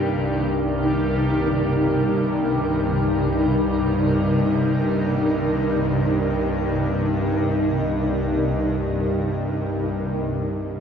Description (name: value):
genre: dark ambient drone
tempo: free time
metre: none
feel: none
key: unclear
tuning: A4 = 440 Hz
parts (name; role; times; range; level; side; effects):
- granular cloud pad; sustained chords; 0.0-10.8 s; C3 to F5; -22 LUFS; equal; built-in reverb, shimmer reverb
- bowed-like drone; drone; 0.0-10.8 s; C2 to G2; -24 LUFS; equal; built-in reverb
- bubbling stepped-filter texture; texture; 0.0-10.8 s; G3 to G4; -30 LUFS; right 1 dB; chorus, built-in reverb, shimmer reverb
room: wet huge ambient reverb, RT60 7.7 s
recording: worn, warbling old tape, cassette tape, warbly pitch drift, nothing above 7.8 kHz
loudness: -19 LUFS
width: side -7 dB against mid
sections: 0.0-10.8 A section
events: none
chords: 0.0 Ebadd9/C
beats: free time